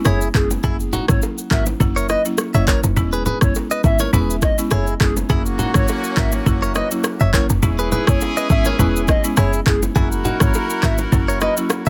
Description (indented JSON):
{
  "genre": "afrobeats",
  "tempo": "103 BPM",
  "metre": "4/4",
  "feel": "swing 55% on 16ths",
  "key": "F# mixolydian",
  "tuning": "A4 = 440 Hz",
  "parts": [
    { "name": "buzzing marimba with medium hard mallets", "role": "accompaniment", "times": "0.0-11.7 s", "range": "F#3 to E4", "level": "-27 LUFS", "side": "equal", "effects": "none" },
    { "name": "afro-pop drum kit", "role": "drums", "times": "0.0-11.9 s", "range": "handclaps, kick drum, rim click, shaker", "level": "-22 LUFS", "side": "equal", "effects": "none" },
    { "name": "bongos and congas", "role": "percussion", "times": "0.0-11.8 s", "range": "none", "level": "-29 LUFS", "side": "equal", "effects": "none" },
    { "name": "hollow clarinet-like synth lead", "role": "melody", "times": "0.1-11.6 s", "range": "G#4 to E5", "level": "-27 LUFS", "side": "equal", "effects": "chorus, tape echo" },
    { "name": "direct-recorded clean electric guitar", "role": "riff", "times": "0.1-11.9 s", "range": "D#4 to E5", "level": "-27 LUFS", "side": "equal", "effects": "tape echo" },
    { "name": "woody log drum bass", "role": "bass", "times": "0.1-11.9 s", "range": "E1 to G#1", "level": "-22 LUFS", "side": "equal", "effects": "none" },
    { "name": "warm horn section", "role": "second line", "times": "5.3-11.9 s", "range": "A#3 to A#4", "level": "-28 LUFS", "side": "equal", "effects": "none" }
  ],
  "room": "little or no reverb",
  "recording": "dense, heavily limited modern master",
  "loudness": "-18 LUFS",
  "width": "mono",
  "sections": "0.0-11.9 A section",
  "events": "none",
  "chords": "0.0 E6; 0.6 F#7; 3.0 E6; 5.3 F#7; 7.6 E6; 10.0 F#7"
}